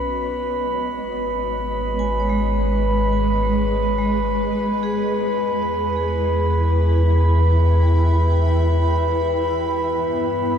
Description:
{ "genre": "ambient", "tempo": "free time", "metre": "none", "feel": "none", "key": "unclear", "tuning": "A4 = 440 Hz", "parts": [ { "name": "granular cloud pad", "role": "sustained chords", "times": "0.0-10.6 s", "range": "G#3 to B5", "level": "-26 LUFS", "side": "right 2 dB", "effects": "built-in reverb" }, { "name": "vibraphone with hard mallets", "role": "arpeggios", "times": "0.0-10.2 s", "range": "G#3 to G#5", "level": "-28 LUFS", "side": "left 2 dB", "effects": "tape echo" }, { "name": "deep rumbling drone", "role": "bass", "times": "0.0-10.6 s", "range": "G#1 to G2", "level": "-20 LUFS", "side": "equal", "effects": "built-in reverb" }, { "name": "glass harmonica", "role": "texture", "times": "0.0-10.6 s", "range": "B4 to B5", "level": "-22 LUFS", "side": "equal", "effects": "none" } ], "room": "moderate shimmer reverb, RT60 6.8 s", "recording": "cassette tape", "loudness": "-17 LUFS", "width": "side -8 dB against mid", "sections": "0.0-10.6 A section", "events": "fade-in on ambient pad 0.0-10.6; fade-in on vibraphone 0.0-10.6", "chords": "0.4 G#m; 4.9 Em; 9.5 G" }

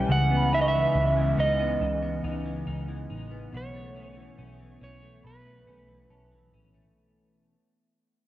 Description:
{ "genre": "dream pop", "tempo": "70 BPM", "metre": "4/4", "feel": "straight", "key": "B mixolydian", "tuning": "A4 = 440 Hz", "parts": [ { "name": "electric slide guitar", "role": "melody", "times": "0.0-6.5 s", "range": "B4 to G5", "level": "-27 LUFS", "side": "right 2 dB", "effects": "tape echo" }, { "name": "warbly tape-like pad", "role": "sustained chords", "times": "0.0-6.9 s", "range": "C#3 to C#4", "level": "-33 LUFS", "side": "equal", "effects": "chorus, built-in reverb" }, { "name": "semi-hollow electric guitar", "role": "arpeggios", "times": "0.0-7.5 s", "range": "B2 to E4", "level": "-31 LUFS", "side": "left 2 dB", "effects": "analog chorus, tape echo" }, { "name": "vintage muted picked electric bass", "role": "bass", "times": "0.0-6.9 s", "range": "A1 to C#2", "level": "-31 LUFS", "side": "equal", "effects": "none" }, { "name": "large celesta", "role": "texture", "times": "0.1-7.3 s", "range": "F#5 to C#6", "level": "-35 LUFS", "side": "right 3 dB", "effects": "tape echo" } ], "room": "moderate plate reverb, RT60 2.6 s", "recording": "worn, warbling old tape, cassette tape, warbly pitch drift, faint mains hum", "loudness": "-23 LUFS", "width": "side -14 dB against mid", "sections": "0.0-7.0 A section", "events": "fade-out 0.0-7.0", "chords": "0.1 C#m9; 3.5 B9sus4" }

